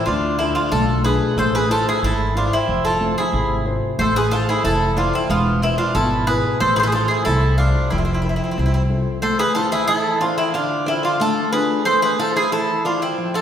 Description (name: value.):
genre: greek folk, Greek bouzouki band.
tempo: 92 BPM.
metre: 2/4.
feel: straight.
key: unclear.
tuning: A4 = 440 Hz.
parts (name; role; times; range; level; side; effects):
Greek bouzouki; melody; 0.0-13.4 s; E4 to C5; -20 LUFS; right 1 dB; none.
Greek bouzouki; second line; 0.0-13.4 s; B3 to A4; -24 LUFS; right 1 dB; none.
nylon-string guitar; accompaniment; 0.0-13.4 s; B2 to E5; -24 LUFS; left 2 dB; none.
upright bass; bass; 0.1-9.0 s; E1 to D2; -21 LUFS; equal; none.
room: wet concert hall reverb, RT60 2.1 s.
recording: recorded in a church or concert hall.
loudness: -16 LUFS.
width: side -9 dB against mid.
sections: 0.0-9.2 A section; 9.2-13.4 A section.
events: none.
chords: 0.1 Dm; 1.4 Am; 2.7 F; 4.0 Am; 5.3 E; 6.6 Am; 7.9 F; 9.2 Am; 10.5 Dm; 11.9 Am.